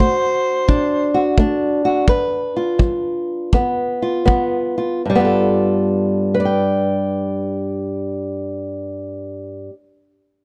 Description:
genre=acoustic country blues, solo or duo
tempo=77-88 BPM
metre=4/4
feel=swing 65% on 8ths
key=G mixolydian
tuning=A4 = 439 Hz
part: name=overdriven harmonica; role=melody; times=0.0-1.3 s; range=C5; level=-21 LUFS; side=equal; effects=none
part: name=fingerpicked old ladder-braced acoustic guitar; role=accompaniment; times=0.0-9.7 s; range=G2 to G5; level=-20 LUFS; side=equal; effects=none
part: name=kick drum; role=drums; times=0.0-4.5 s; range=none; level=-18 LUFS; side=equal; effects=none
room=light reverb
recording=dark, warm production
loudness=-19 LUFS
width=mono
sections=0.0-5.0 A section; 5.0-8.2 B section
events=slowing down 0.0-5.0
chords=0.0 D7; 2.1 G7; 5.0 G9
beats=0.67 1.37 | 2.07 2.79 3.52 4.27 | 5.04 5.83 6.61 7.39

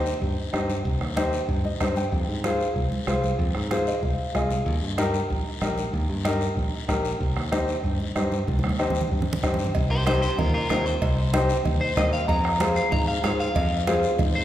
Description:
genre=latin, cumbia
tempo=189 BPM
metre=4/4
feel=straight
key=C minor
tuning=A4 = 437 Hz
part: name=warm upright piano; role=accompaniment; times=0.0-14.1 s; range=Eb4 to Ab5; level=-27 LUFS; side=left 2 dB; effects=none
part: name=modern bright fingered electric bass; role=bass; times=0.0-14.4 s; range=Bb1 to Ab2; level=-27 LUFS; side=equal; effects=none
part: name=guiro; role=percussion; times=0.1-14.4 s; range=none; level=-39 LUFS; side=left 6 dB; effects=none
part: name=bombo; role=percussion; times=0.2-14.3 s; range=none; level=-28 LUFS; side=right 1 dB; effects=none
part: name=congas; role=percussion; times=0.2-14.3 s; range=none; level=-32 LUFS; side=right 2 dB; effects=none
part: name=cowbell and timbales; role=percussion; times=9.7-14.3 s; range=none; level=-35 LUFS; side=right 3 dB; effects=none
part: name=electric guitar at the edge of break-up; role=melody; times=9.9-14.4 s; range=F4 to Bb5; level=-27 LUFS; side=left 1 dB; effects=spring reverb
room=wet recital hall reverb, RT60 1.8 s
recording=recorded in a church or concert hall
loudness=-22 LUFS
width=side -12 dB against mid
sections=0.0-9.7 A section; 9.7-14.4 B section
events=upright piano fill 1.5-2.1, 3.7-4.7; drum fill 8.5-9.7; clean electric guitar solo 9.7-14.4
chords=0.0 Cm; 2.1 Fm; 4.7 Eb; 7.2 Cm; 12.3 Fm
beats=0.22 0.53 | 0.85 1.17 1.49 1.80 | 2.12 2.44 2.76 3.08 | 3.39 3.71 4.03 4.35 | 4.67 4.98 5.30 5.62 | 5.94 6.25 6.57 6.89 | 7.21 7.53 7.84 8.16 | 8.48 8.80 9.11 9.43 | 9.75 10.07 10.38 10.70 | 11.02 11.34 11.65 11.97 | 12.29 12.60 12.92 13.24 | 13.55 13.87 14.19

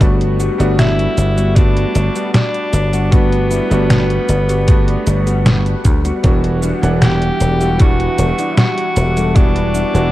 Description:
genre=vaporwave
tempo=77 BPM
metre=4/4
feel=straight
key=G major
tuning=A4 = 440 Hz
part: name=clear electric grand piano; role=accompaniment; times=0.0-10.1 s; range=E3 to F#5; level=-20 LUFS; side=right 1 dB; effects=lush chorus, analog delay
part: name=soft string machine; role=sustained chords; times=0.0-10.1 s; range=G3 to D6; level=-28 LUFS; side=equal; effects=none
part: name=dry thumbed slap bass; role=bass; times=0.0-10.1 s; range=E1 to D2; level=-16 LUFS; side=equal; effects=tube saturation
part: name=detuned 8-bit digital drum machine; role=drums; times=0.0-10.1 s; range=cabasa, hi-hat, snare drum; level=-16 LUFS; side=equal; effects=small room ambience
part: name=electronic kick drum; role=drums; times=0.0-9.5 s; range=none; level=-12 LUFS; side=equal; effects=small room ambience
part: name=mellow electric guitar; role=riff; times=0.4-10.0 s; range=G3 to A4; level=-26 LUFS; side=left 3 dB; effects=analog chorus, analog delay
part: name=clear tenor saxophone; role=melody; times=0.8-10.1 s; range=B3 to G4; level=-20 LUFS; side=left 1 dB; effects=tape echo
room=little or no reverb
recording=dark, warm production, cassette tape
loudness=-12 LUFS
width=side -15 dB against mid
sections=0.0-10.1 A section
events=none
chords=0.0 Gmaj7; 6.2 Em9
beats=| 0.01 0.79 1.57 2.35 | 3.12 3.90 4.68 5.46 | 6.24 7.02 7.80 8.58 | 9.36

